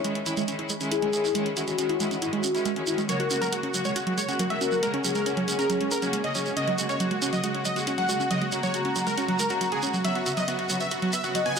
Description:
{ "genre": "uplifting trance", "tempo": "138 BPM", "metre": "4/4", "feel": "straight", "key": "unclear", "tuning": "A4 = 440 Hz", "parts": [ { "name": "warm velvety synth lead", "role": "second line", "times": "0.0-11.6 s", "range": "F#4 to A#5", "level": "-30 LUFS", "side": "left 3 dB", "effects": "chorus, ping-pong delay" }, { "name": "clear studio string section", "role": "sustained chords", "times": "0.0-11.6 s", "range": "C#3 to F#4", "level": "-32 LUFS", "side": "left 1 dB", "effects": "low-pass filter" }, { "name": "analog pluck", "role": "arpeggios", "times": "0.0-11.6 s", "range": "F#3 to F#4", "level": "-30 LUFS", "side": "right 3 dB", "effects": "chorus, vintage 12-bit sampler grit, tape echo" }, { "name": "electronic hi-hat", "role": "drums", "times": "0.0-11.6 s", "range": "none", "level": "-35 LUFS", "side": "equal", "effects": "none" }, { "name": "shekere", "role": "percussion", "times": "0.0-11.6 s", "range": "none", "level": "-33 LUFS", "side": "right 3 dB", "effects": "none" }, { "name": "supersaw chords", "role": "melody", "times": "3.1-11.6 s", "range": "C#4 to G#5", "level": "-28 LUFS", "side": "equal", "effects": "dub echo" } ], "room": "light reverb", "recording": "none", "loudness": "-24 LUFS", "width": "side -6 dB against mid", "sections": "0.0-11.6 A section", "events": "none", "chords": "0.0 C#madd9; 3.1 F#add9; 10.0 Bsus2" }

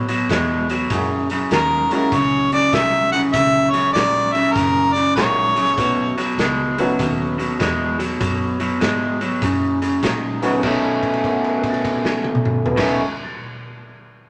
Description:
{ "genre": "electric blues shuffle", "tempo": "99 BPM", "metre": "4/4", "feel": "swing 65% on 8ths", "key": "B mixolydian", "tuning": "A4 = 440 Hz", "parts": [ { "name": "electric guitar through a small old amp", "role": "riff", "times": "0.0-13.0 s", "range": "F#2 to C#4", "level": "-22 LUFS", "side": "equal", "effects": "none" }, { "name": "vintage muted fingered electric bass", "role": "bass", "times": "0.0-13.0 s", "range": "F#1 to A#2", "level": "-31 LUFS", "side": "equal", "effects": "none" }, { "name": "raw garage drum kit", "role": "drums", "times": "0.1-12.9 s", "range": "crash cymbal, hi-hat, kick drum, snare drum, toms", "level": "-27 LUFS", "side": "equal", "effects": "none" }, { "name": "warm upright piano", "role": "accompaniment", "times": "0.9-13.4 s", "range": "B2 to C#7", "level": "-27 LUFS", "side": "equal", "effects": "none" }, { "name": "clear harmonica", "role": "melody", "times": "1.5-6.3 s", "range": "A#4 to F#5", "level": "-20 LUFS", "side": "equal", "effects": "overdrive" } ], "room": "wet club reverb, RT60 0.7 s", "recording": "none", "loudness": "-19 LUFS", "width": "mono", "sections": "0.0-10.6 A section; 10.6-13.1 B section", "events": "held note 10.6-12.7", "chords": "0.0 B7(no3); 0.9 F#7; 5.8 B7; 9.4 F#; 10.6 B9" }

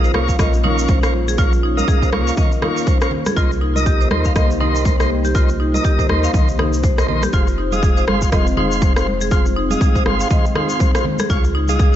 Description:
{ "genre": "afro house", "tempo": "121 BPM", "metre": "4/4", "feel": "swing 58% on 16ths", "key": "F minor", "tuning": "A4 = 441 Hz", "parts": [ { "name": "dark analog pad", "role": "sustained chords", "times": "0.0-12.0 s", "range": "Ab3 to G5", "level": "-25 LUFS", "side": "left 2 dB", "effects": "chorus, sidechain pumping" }, { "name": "marimba with hard mallets", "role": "arpeggios", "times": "0.0-11.9 s", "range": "Eb4 to F5", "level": "-24 LUFS", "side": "equal", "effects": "sidechain pumping, low-pass filter, tape echo" }, { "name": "tonewheel organ", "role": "stabs", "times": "0.0-12.0 s", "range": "Ab3 to Eb5", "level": "-23 LUFS", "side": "right 1 dB", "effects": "fast rotary speaker, sidechain pumping, tape echo" }, { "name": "warm sub bass", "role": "bass", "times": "0.0-12.0 s", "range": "F1 to Eb2", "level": "-21 LUFS", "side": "equal", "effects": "sidechain pumping" }, { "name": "tube shaker", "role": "percussion", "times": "0.0-12.0 s", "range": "none", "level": "-33 LUFS", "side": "left 2 dB", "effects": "none" }, { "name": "electronic rim click", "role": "drums", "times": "0.1-11.3 s", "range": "none", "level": "-26 LUFS", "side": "left 2 dB", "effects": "studio reverb" }, { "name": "congas", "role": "percussion", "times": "0.1-11.8 s", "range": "none", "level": "-27 LUFS", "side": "right 2 dB", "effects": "none" }, { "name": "electronic kick drum", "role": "drums", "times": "0.3-11.9 s", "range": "none", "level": "-16 LUFS", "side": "equal", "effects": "overdrive, studio reverb" } ], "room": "light reverb", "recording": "nothing above 7.7 kHz", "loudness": "-14 LUFS", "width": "side -11 dB against mid", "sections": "0.0-12.0 A section", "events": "none", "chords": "0.0 Bbm; 3.4 Cm7; 7.3 Fm; 11.3 Db" }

